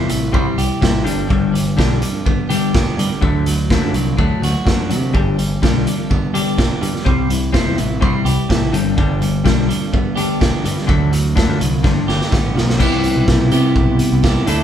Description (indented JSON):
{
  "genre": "indie rock",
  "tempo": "125 BPM",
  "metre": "4/4",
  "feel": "straight",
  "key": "G major",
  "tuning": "A4 = 440 Hz",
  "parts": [
    { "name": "electric guitar at the edge of break-up", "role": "riff", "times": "0.0-14.6 s", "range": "G2 to A4", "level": "-21 LUFS", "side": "right 3 dB", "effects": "none" },
    { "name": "twelve-string electric guitar", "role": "riff", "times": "0.0-14.6 s", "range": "G2 to E4", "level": "-20 LUFS", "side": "left 5 dB", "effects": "none" },
    { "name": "growling picked electric bass", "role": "bass", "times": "0.0-14.6 s", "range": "E1 to C3", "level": "-20 LUFS", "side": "right 1 dB", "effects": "overdrive" },
    { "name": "raw garage drum kit", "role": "drums", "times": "0.1-14.6 s", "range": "crash cymbal, hi-hat, kick drum, snare drum", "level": "-18 LUFS", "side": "equal", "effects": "none" }
  ],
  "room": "moderate small room reverb, RT60 0.6 s",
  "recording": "band playing live in one room",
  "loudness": "-14 LUFS",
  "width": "side -10 dB against mid",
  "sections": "0.0-12.8 A section; 12.8-14.6 B section",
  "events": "drum fill 11.8-12.8",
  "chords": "0.0 C; 1.1 G; 3.2 D; 5.1 G; 7.1 C; 8.7 G; 10.9 D; 11.8 G7; 12.8 Cmaj7"
}